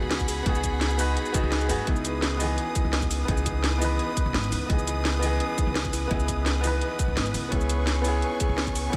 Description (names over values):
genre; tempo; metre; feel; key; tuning
liquid drum and bass; 170 BPM; 4/4; straight; C# minor; A4 = 441 Hz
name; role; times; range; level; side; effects
clear baby grand piano; accompaniment; 0.0-9.0 s; E3 to D#5; -32 LUFS; equal; diffuse ambient delay
clear symphonic string section; sustained chords; 0.0-9.0 s; G#4 to D#6; -37 LUFS; equal; sidechain pumping
kalimba; arpeggios; 0.0-9.0 s; B3 to G#4; -37 LUFS; equal; analog delay
upright bass; bass; 0.0-9.0 s; G#1 to C#2; -30 LUFS; equal; tube saturation
drum and bass drum kit; drums; 0.1-9.0 s; cabasa, hi-hat, snare drum; -33 LUFS; equal; none
electronic kick drum; drums; 0.2-9.0 s; none; -29 LUFS; equal; none
room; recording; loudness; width
moderate huge ambient reverb, RT60 4.3 s; dreamy mix soaked in reverb; -26 LUFS; mono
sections
0.0-9.0 A section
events
none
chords
0.0 G#m7/C#; 1.9 C#m9; 7.5 Amaj9/C# (rootless)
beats
0.11 | 0.46 0.81 1.17 1.52 | 1.87 2.23 2.58 2.93 | 3.29 3.64 3.99 4.34 | 4.70 5.05 5.40 5.76 | 6.11 6.46 6.82 7.17 | 7.52 7.87 8.23 8.58 | 8.93